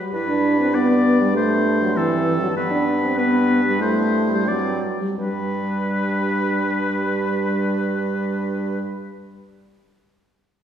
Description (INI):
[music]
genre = quick classical-period movement for wind quintet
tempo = 83-100 BPM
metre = 2/4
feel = straight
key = G major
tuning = A4 = 440 Hz
[part]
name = mellow French horn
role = accompaniment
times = 0.0-8.8 s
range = E3 to D4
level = -21 LUFS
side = equal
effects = none
[part]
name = warm oboe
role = second line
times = 0.1-8.8 s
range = A4 to D5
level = -24 LUFS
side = left 3 dB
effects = none
[part]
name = clear clarinet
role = accompaniment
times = 0.1-8.8 s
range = B3 to E4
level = -29 LUFS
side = right 3 dB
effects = none
[part]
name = warm bassoon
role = bass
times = 0.1-8.8 s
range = G2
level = -26 LUFS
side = right 2 dB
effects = none
[sound]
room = wet scoring stage reverb, RT60 1.7 s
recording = recorded in a church or concert hall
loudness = -18 LUFS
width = side -9 dB against mid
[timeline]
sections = 0.1-5.2 A section; 5.2-8.0 B section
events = slowing down 2.0-5.2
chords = 0.1 G; 1.3 D5/G; 2.6 G; 3.8 C/G; 5.2 G